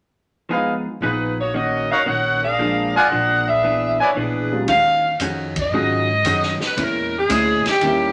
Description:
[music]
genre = jazz, big band swing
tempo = 115 BPM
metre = 4/4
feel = swing 69% on 8ths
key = Eb minor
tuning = A4 = 442 Hz
[part]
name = vintage hollow-body jazz guitar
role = accompaniment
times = 0.5-8.1 s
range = Bb2 to Ab4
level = -28 LUFS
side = equal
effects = none
[part]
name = warm concert grand piano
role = accompaniment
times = 0.5-8.1 s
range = Eb2 to F4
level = -28 LUFS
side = equal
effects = none
[part]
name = clear trumpet section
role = stabs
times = 0.5-4.1 s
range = Eb4 to Ab5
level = -22 LUFS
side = equal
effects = none
[part]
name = bright saxophone section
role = melody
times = 1.0-8.1 s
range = G#3 to Gb5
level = -21 LUFS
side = equal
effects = none
[part]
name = upright bass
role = bass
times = 1.0-8.1 s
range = Bb1 to Ab2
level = -30 LUFS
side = equal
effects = none
[part]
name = vintage drum kit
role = drums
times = 4.7-8.0 s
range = hi-hat, kick drum, ride cymbal, snare drum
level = -30 LUFS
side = equal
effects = none
[sound]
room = wet studio reverb, RT60 0.7 s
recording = none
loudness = -19 LUFS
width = mono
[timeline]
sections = 0.5-4.7 A section; 4.7-8.1 B section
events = band accent 5.5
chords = 0.5 Fm7b5; 1.5 Ebm7; 2.6 Bb7; 3.6 E7; 4.7 Ebm11; 6.8 Bbm7b5

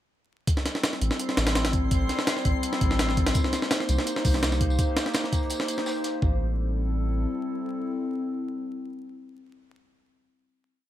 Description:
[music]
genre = drum and bass, jungle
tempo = 167 BPM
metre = 4/4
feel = straight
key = A minor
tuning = A4 = 440 Hz
[part]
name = warbly tape-like pad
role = sustained chords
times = 0.5-9.9 s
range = G3 to C5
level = -30 LUFS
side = left 1 dB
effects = chorus, built-in reverb
[part]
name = breakbeat sampler-style drum kit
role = drums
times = 0.5-6.3 s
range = hi-hat, kick drum, snare drum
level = -25 LUFS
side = equal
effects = none
[part]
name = twinkling granular texture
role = texture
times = 1.2-4.8 s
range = C5 to C6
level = -37 LUFS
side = right 1 dB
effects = built-in reverb
[part]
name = soft dub sub bass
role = bass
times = 1.0-7.3 s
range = A1 to C2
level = -26 LUFS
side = equal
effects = none
[part]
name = crunchy breakbeat drum kit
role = drums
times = 3.3-6.1 s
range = hi-hat, snare drum, tambourine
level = -38 LUFS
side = left 1 dB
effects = high-pass filter on hats, high-pass filter on snare, high-pass filter on perc, high-pass filter on room
[sound]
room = light reverb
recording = vinyl crackle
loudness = -24 LUFS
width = side -12 dB against mid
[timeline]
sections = 0.5-6.2 drop; 6.2-9.1 final chord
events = drop 0.5-6.2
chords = 0.5 Am7; 3.4 Cm7; 6.2 Am7

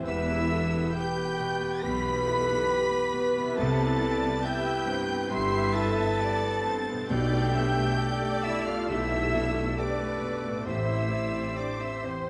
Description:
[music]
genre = cinematic, emotional film score for orchestra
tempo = 68 BPM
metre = 4/4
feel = rubato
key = C major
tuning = A4 = 440 Hz
[part]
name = bright concert grand piano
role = accompaniment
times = 0.0-12.3 s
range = A1 to G4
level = -36 LUFS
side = equal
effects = none
[part]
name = bright symphonic viola section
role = accompaniment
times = 0.0-12.3 s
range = C4 to E5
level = -39 LUFS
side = equal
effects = none
[part]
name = concert harp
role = arpeggios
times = 0.0-12.3 s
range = A2 to G4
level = -44 LUFS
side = equal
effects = none
[part]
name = rich symphonic cello section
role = bass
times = 0.0-11.4 s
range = E2 to C3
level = -36 LUFS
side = equal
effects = none
[part]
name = rich symphonic double bass section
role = bass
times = 0.0-11.4 s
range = E1 to C2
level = -36 LUFS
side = equal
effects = none
[part]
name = warm symphonic violin section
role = melody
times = 0.1-12.3 s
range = C6 to C7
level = -40 LUFS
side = equal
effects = none
[part]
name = concert flute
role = second line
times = 0.1-12.3 s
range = C5 to C6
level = -38 LUFS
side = equal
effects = none
[part]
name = mellow clarinet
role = second line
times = 0.1-12.3 s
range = E4 to G4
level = -41 LUFS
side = equal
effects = none
[part]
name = mellow cor anglais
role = second line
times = 0.1-12.3 s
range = A4 to C5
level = -39 LUFS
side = equal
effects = none
[part]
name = warm symphonic violin section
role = second line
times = 0.1-12.3 s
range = C5 to C6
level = -40 LUFS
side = equal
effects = none
[part]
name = mellow French horn section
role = sustained chords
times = 0.1-12.3 s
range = C4 to B4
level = -35 LUFS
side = equal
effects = none
[sound]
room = wet scoring stage reverb, RT60 1.4 s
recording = vinyl crackle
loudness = -28 LUFS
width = mono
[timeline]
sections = 0.0-12.3 A section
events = none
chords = 0.1 Em; 3.6 Cmaj7; 7.1 Gadd9/B; 10.7 Am7

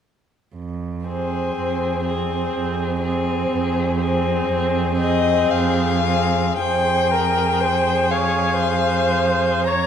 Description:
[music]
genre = classical, slow romantic movement for string quartet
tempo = 59 BPM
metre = 3/4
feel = uneven beats, rubato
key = F minor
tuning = A4 = 440 Hz
[part]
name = rich cello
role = bass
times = 0.6-9.9 s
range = F2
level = -23 LUFS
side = right 4 dB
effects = none
[part]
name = warm violin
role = melody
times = 1.1-9.9 s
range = C5 to Bb5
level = -23 LUFS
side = left 7 dB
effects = none
[part]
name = rich violin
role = second line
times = 1.1-9.9 s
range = Ab4 to Db5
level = -26 LUFS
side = left 4 dB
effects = none
[part]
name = rich viola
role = accompaniment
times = 1.1-9.9 s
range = C4 to Db5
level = -22 LUFS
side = right 2 dB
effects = none
[sound]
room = moderate concert hall reverb, RT60 1.7 s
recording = none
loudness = -18 LUFS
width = side -8 dB against mid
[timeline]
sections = 0.6-6.6 A section; 6.6-9.9 B section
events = none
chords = 0.6 Fm

